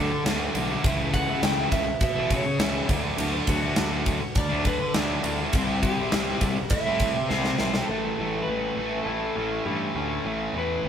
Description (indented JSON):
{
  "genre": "quiet-loud alternative rock",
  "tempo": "102 BPM",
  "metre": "4/4",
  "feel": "straight",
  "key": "unclear",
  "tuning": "A4 = 440 Hz",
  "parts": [
    { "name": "electric guitar through a small old amp", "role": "melody", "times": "0.0-10.9 s", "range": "F#4 to G5", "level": "-30 LUFS", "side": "equal", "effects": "none" },
    { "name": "fuzz guitar", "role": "riff", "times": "0.0-10.9 s", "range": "A2 to E4", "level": "-27 LUFS", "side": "equal", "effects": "distortion" },
    { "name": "fuzz picked electric bass", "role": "bass", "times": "0.0-10.9 s", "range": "G1 to B2", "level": "-32 LUFS", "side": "equal", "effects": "overdrive" },
    { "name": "huge arena drum kit", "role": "drums", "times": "0.3-7.9 s", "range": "kick drum, ride cymbal, snare drum", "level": "-27 LUFS", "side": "equal", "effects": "none" },
    { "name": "twangy electric guitar", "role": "arpeggios", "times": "7.9-10.9 s", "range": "A2 to E4", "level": "-35 LUFS", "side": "left 1 dB", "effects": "none" }
  ],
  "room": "light reverb",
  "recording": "band playing live in one room",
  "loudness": "-23 LUFS",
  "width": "side -8 dB against mid",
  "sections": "0.0-7.9 A section; 7.9-10.9 B section",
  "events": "drum fill 7.3-7.9",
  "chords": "0.0 D6; 0.8 A/C#; 2.9 D; 5.5 C; 7.9 A"
}